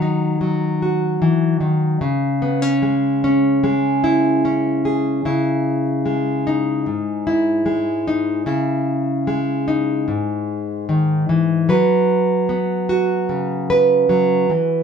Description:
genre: folk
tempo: 74 BPM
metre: 4/4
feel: straight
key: C# minor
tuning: A4 = 439 Hz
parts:
  - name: nylon-string guitar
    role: solo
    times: 0.0-14.8 s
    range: G#2 to B4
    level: -16 LUFS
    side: equal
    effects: none
room: wet studio reverb, RT60 0.6 s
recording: band playing live in one room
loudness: -16 LUFS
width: side -7 dB against mid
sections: 0.0-5.2 A section; 5.2-14.8 B section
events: none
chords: 0.0 D#m; 2.0 C#m; 5.2 C#madd9; 11.7 F#sus4

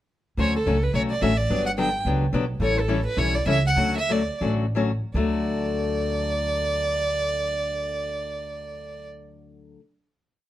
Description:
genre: acoustic string swing (jazz manouche)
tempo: 152-216 BPM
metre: 4/4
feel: swing 57% on 8ths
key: D major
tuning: A4 = 440 Hz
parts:
  - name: warm violin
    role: melody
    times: 0.4-9.1 s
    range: A4 to G5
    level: -26 LUFS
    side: right 2 dB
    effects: none
  - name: picked steel-string acoustic guitar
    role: accompaniment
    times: 0.4-9.8 s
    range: D3 to A4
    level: -27 LUFS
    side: left 4 dB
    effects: none
  - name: upright bass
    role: bass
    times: 0.4-9.7 s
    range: G1 to D2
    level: -27 LUFS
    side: equal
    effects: none
room: light reverb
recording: none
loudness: -22 LUFS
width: side -13 dB against mid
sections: 0.0-0.4 pickup bar; 0.4-5.1 A section; 5.1-8.3 final chord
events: slowing down 2.6-5.1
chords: 0.4 Dmaj7; 1.5 Gmaj7; 2.6 A7; 3.8 Dmaj7; 5.1 D

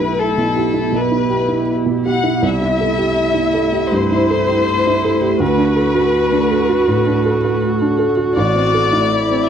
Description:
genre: neoclassical piano and strings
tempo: 80 BPM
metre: 4/4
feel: rubato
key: unclear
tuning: A4 = 435 Hz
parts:
  - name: clear chamber violin section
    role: melody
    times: 0.0-9.4 s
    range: A4 to F#5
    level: -18 LUFS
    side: left 5 dB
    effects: slapback echo
  - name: felt-muted upright piano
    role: accompaniment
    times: 0.0-9.5 s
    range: A1 to A4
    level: -17 LUFS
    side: right 2 dB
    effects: none
  - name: rich viola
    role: accompaniment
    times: 0.0-9.5 s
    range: E4 to F#4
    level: -22 LUFS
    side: right 3 dB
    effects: none
  - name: ethereal airy pad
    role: sustained chords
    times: 0.0-9.5 s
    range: A3 to C5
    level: -21 LUFS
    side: right 1 dB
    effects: ensemble chorus, built-in reverb
room: light reverb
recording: dry, close 1970s-style studio recording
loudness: -13 LUFS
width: side -8 dB against mid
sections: 0.0-9.5 A section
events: none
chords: 0.0 Em/B; 2.4 C6; 5.4 D6; 8.4 Am

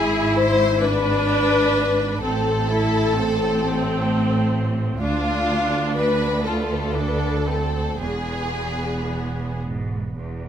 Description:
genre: classical, slow romantic movement for string orchestra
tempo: 36-45 BPM (dotted quarters)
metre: 6/8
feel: rubato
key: unclear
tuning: A4 = 439 Hz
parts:
  - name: rich chamber violin section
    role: melody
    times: 0.0-9.6 s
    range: F4 to C5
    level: -27 LUFS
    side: left 2 dB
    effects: none
  - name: warm chamber violin section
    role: second line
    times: 0.0-9.6 s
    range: F4 to C5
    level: -24 LUFS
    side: left 2 dB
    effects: none
  - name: rich chamber viola section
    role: accompaniment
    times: 0.0-10.4 s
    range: B3 to F4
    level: -25 LUFS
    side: equal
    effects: none
  - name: rich chamber double bass section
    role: bass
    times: 0.0-10.5 s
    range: E1 to D2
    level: -27 LUFS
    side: right 3 dB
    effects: none
  - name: rich symphonic cello section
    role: bass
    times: 0.0-10.5 s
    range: D2 to A2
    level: -26 LUFS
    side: right 1 dB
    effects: none
room: light reverb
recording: close, detailed microphones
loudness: -19 LUFS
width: side -9 dB against mid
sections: 0.0-10.5 A section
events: none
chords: 0.0 E7/G#; 2.2 Am; 5.0 Dm; 8.0 E

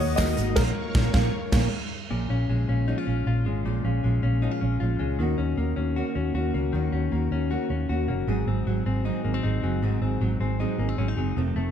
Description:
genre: jangly indie pop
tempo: 155 BPM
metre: 4/4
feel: straight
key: Bb minor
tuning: A4 = 440 Hz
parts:
  - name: dark upright piano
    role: melody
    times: 0.0-1.7 s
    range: Bb4 to Eb5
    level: -31 LUFS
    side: equal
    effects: ping-pong delay
  - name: fingerpicked steel-string acoustic guitar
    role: accompaniment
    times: 0.0-11.7 s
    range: F2 to A4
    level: -30 LUFS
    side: right 3 dB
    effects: none
  - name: string machine, cellos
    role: sustained chords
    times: 0.0-2.1 s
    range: Gb4 to Eb6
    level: -36 LUFS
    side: equal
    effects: phaser, ensemble chorus
  - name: direct-recorded clean electric guitar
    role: arpeggios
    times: 0.0-11.7 s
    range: F2 to Gb4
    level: -30 LUFS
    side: left 6 dB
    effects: ping-pong delay
  - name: vintage muted fingered electric bass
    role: bass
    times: 0.0-11.7 s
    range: F1 to Eb2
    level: -26 LUFS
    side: right 1 dB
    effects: none
  - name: big rock drum kit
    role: drums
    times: 0.2-1.6 s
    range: crash cymbal, hi-hat, kick drum, snare drum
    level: -26 LUFS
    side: equal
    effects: none
  - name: tambourine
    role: percussion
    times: 0.2-0.5 s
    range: none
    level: -40 LUFS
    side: right 4 dB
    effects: none
room: moderate small room ambience, RT60 0.5 s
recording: none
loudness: -23 LUFS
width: side -9 dB against mid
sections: 0.0-2.1 A section; 2.1-11.7 B section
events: band accent 0.6-2.1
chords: 0.0 Ebm; 0.6 Bbm; 2.1 Bbm7; 5.2 Ebm7; 8.3 Ab7

